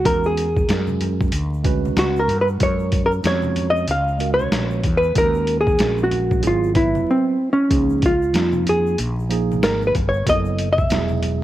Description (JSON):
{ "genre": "hip hop, jazz-hop", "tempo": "94 BPM", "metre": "4/4", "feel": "swing 61% on 16ths", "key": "unclear", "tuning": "A4 = 440 Hz", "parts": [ { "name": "hollow-body jazz guitar", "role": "melody", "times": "0.0-11.4 s", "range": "C4 to F5", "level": "-19 LUFS", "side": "equal", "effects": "none" }, { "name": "tine electric piano", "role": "accompaniment", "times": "0.0-11.4 s", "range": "F3 to Db5", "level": "-27 LUFS", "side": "right 8 dB", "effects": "medium stereo tremolo" }, { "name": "mellow fretless electric bass", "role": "bass", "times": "0.1-11.4 s", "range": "Fb1 to G2", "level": "-23 LUFS", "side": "equal", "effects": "none" }, { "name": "boom bap sampler-style drum kit", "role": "drums", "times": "0.1-11.4 s", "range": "hi-hat, kick drum, snare drum", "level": "-23 LUFS", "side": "equal", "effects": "none" }, { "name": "tube shaker and congas", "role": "percussion", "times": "0.1-11.4 s", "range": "none", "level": "-34 LUFS", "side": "left 6 dB", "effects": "none" } ], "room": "light reverb", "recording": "1960s-style stereo with parts hard left and right, vinyl crackle", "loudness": "-17 LUFS", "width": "side -14 dB against mid", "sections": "0.0-11.4 A section", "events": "hollow-body jazz guitar solo 0.0-11.4; silent gap 7.1-7.7", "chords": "0.1 E9; 2.6 Gbmaj7; 5.2 Ebm7; 6.4 Ab7alt; 7.7 Db6; 10.3 Gbm7", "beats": "| 0.05 0.69 1.33 1.97 | 2.61 3.25 3.88 4.52 | 5.16 5.80 6.44 7.08 | 7.71 8.35 8.99 9.63 | 10.27 10.90" }